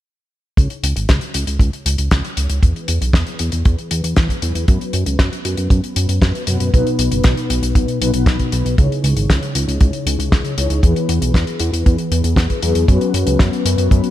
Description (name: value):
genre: italo disco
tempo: 117 BPM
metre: 4/4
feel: straight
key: C# minor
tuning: A4 = 442 Hz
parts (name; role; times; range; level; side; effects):
- mellow synth brass; stabs; 0.6-14.1 s; B2 to C#5; -21 LUFS; left 2 dB; chorus, tape echo
- fat analog bass; bass; 0.6-14.0 s; F#1 to F#2; -19 LUFS; equal; none
- damped 70s drum kit; drums; 0.6-14.1 s; hi-hat, snare drum; -22 LUFS; left 2 dB; studio reverb
- kick drum; drums; 0.6-14.0 s; none; -14 LUFS; equal; studio reverb
room: studio reverb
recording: none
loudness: -14 LUFS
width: side -13 dB against mid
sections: 0.6-14.1 A section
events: filter sweep on analog polysynth 0.6-14.1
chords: 0.6 C#madd9; 2.6 E; 4.7 F#sus4; 6.7 B; 8.8 C#madd9; 10.8 E; 12.9 F#sus4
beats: | 0.58 1.09 1.60 2.12 | 2.63 3.14 3.65 4.17 | 4.68 5.19 5.71 6.22 | 6.73 7.24 7.76 8.27 | 8.78 9.29 9.81 10.32 | 10.83 11.35 11.86 12.37 | 12.88 13.40 13.91